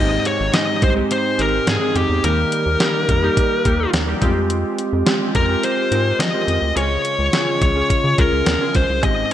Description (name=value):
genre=1980s-style pop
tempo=106 BPM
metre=4/4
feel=straight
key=unclear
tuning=A4 = 440 Hz
part: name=fuzz lead guitar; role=melody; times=0.0-9.3 s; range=G4 to Eb5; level=-20 LUFS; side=left 1 dB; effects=distortion
part: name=glassy digital keys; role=accompaniment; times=0.0-9.3 s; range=Ab2 to Bb4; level=-21 LUFS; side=right 1 dB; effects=chorus
part: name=rubbery square bass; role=bass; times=0.0-9.2 s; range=Ab1 to F3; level=-22 LUFS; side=equal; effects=none
part: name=clean 12-bit digital drum machine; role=drums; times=0.3-9.3 s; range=hi-hat, kick drum, snare drum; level=-20 LUFS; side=equal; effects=gated reverb
part: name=direct-recorded clean electric guitar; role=riff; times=9.0-9.3 s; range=Ab3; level=-27 LUFS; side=right 4 dB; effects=analog chorus, ping-pong delay
room=moderate plate reverb, RT60 2.9 s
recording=bright 1980s-style digital production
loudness=-15 LUFS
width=side -11 dB against mid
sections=0.0-9.3 A section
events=none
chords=0.0 Abmaj7; 2.2 Eb; 4.2 Fmadd9; 6.8 Db